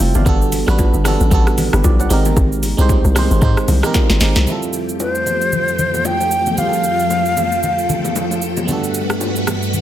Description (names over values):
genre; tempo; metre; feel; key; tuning
amapiano; 114 BPM; 4/4; swing 58% on 16ths; unclear; A4 = 440 Hz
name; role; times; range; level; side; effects
FM electric piano; accompaniment; 0.0-9.8 s; G3 to A5; -21 LUFS; right 4 dB; chorus
hollow log drum bass; bass; 0.0-4.5 s; F1 to Ab2; -15 LUFS; equal; none
afro-pop drum kit; drums; 0.0-9.8 s; hi-hat, kick drum, rim click, shaker, snare drum; -18 LUFS; equal; soft clipping on snare
bongos and congas; percussion; 0.1-9.8 s; none; -25 LUFS; left 4 dB; none
string machine, violins; sustained chords; 4.5-9.8 s; F2 to G5; -21 LUFS; left 1 dB; phaser, ensemble chorus, sidechain pumping
breathy mellow silver concert flute; melody; 5.0-8.4 s; C5 to G5; -18 LUFS; equal; digital delay
room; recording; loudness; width
light reverb; dense, heavily limited modern master; -13 LUFS; side -12 dB against mid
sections
0.0-4.5 A section; 4.5-9.8 B section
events
drop 0.0-4.5; drum fill 3.9-4.5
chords
0.3 Gmaj9; 2.1 Abmaj9; 4.5 Fmaj9; 8.7 Gmaj9